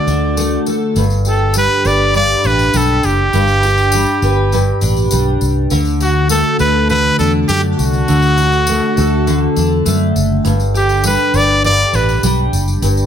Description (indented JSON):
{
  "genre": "acoustic pop",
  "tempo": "101 BPM",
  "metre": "4/4",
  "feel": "straight",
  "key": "G major",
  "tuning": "A4 = 440 Hz",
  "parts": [
    { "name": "brilliant trumpet", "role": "melody", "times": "0.0-12.2 s", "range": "F#4 to D5", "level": "-15 LUFS", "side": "equal", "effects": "digital delay" },
    { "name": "picked steel-string acoustic guitar", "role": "accompaniment", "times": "0.0-13.1 s", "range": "G2 to B4", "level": "-16 LUFS", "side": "equal", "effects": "double-tracked left and right" },
    { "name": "vintage muted fingered electric bass", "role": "bass", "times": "0.1-13.1 s", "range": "F#1 to F#2", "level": "-16 LUFS", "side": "equal", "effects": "none" },
    { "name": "tambourine", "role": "percussion", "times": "0.1-13.1 s", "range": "none", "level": "-26 LUFS", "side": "left 5 dB", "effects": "none" }
  ],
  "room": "moderate small room reverb, RT60 0.5 s",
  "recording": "none",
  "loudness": "-11 LUFS",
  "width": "side -8 dB against mid",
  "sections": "1.0-13.1 A section",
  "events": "none",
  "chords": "0.0 D; 1.0 G; 5.7 D; 10.5 G"
}